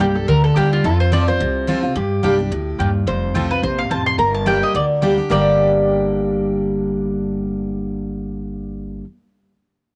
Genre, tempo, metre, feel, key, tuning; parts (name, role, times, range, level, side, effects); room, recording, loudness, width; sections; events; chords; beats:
bluegrass; 215 BPM; 4/4; swing 55% on 8ths; G minor; A4 = 442 Hz
mandolin; melody; 0.0-9.0 s; F4 to C6; -22 LUFS; equal
lap resonator guitar; second line; 0.0-9.0 s; F4 to C5; -30 LUFS; equal
picked steel-string acoustic guitar; accompaniment; 0.0-9.0 s; F2 to G4; -21 LUFS; equal
mandolin; stabs; 0.0-9.0 s; Bb3 to A5; -29 LUFS; equal
upright bass; bass; 0.0-9.0 s; F1 to G2; -29 LUFS; equal
wet booth ambience, RT60 0.2 s; home recording on cassette; -18 LUFS; mono
0.0-3.1 A section; 3.1-5.3 B section; 5.3-7.5 C section
0.0 Gm; 0.8 F; 2.0 Gm; 3.1 F; 4.2 Gm
0.01 0.28 0.56 | 0.84 1.12 1.40 1.68 | 1.96 2.24 2.51 2.79 | 3.07 3.35 3.63 3.91 | 4.19 4.47 4.75 5.03 | 5.30 5.58 5.86 6.14 | 6.42 6.70 6.98 7.26